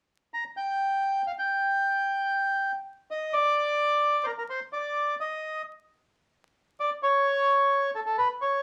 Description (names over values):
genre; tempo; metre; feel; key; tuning
tango; 130 BPM; 4/4; rubato; G minor; A4 = 440 Hz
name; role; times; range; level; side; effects
bandoneon; solo; 0.3-8.6 s; A4 to Bb5; -27 LUFS; equal; none
room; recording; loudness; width
wet club reverb, RT60 0.6 s; vinyl crackle; -27 LUFS; mono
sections
0.0-3.3 A section; 3.3-8.6 B section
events
none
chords
none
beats
0.10 0.57 1.03 | 1.49 1.95 2.40 2.87 | 3.33 3.79 4.26 4.72 | 5.18 5.64 6.10 6.56 | 7.02 7.48 7.94 8.40